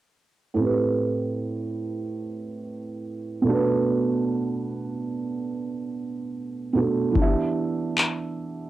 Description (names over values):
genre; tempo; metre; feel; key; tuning
contemporary R&B; 73 BPM; 4/4; straight; A minor; A4 = 440 Hz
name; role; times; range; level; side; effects
felt-muted upright piano; accompaniment; 0.5-8.7 s; A2 to E5; -24 LUFS; right 3 dB; low-pass filter
booming analog drum machine; drums; 7.2-8.2 s; handclaps, kick drum; -21 LUFS; left 2 dB; overdrive, cassette tape
room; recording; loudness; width
moderate studio reverb, RT60 0.6 s; home recording on cassette; -23 LUFS; side -14 dB against mid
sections
0.6-8.7 A section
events
filter sweep on felt piano 0.6-8.7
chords
0.6 Am9; 3.5 Bm7; 7.2 Em7